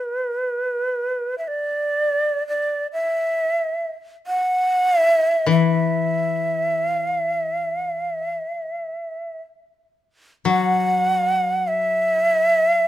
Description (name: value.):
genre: japanese traditional, Japanese chamber music.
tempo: free time.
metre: none.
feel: none.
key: unclear.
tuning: A4 = 439 Hz.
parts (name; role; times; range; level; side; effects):
breathy shakuhachi; melody; 0.0-12.9 s; B4 to F#5; -20 LUFS; right 1 dB; none.
koto; accompaniment; 5.5-12.9 s; E3 to F#3; -22 LUFS; left 6 dB; none.
room: light reverb.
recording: close, detailed microphones.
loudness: -19 LUFS.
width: side -13 dB against mid.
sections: 0.0-12.9 A section.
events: none.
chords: none.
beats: free time.